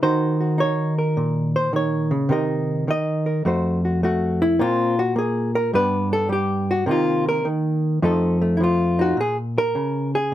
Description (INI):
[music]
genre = solo jazz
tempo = 105 BPM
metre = 4/4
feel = swing 67% on 8ths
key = Bb minor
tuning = A4 = 440 Hz
[part]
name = hollow-body jazz guitar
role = solo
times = 0.0-10.3 s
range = F2 to Eb5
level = -18 LUFS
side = equal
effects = none
[sound]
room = light reverb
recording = none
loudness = -19 LUFS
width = side -12 dB against mid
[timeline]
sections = 0.0-9.2 A section; 9.2-10.3 B section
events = hollow-body jazz guitar solo 0.0-9.2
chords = 0.0 Ebm7; 2.3 Cm7; 3.4 F; 4.6 Bbsus2; 5.7 G; 6.9 Cm7; 8.0 F7; 9.2 Bbm7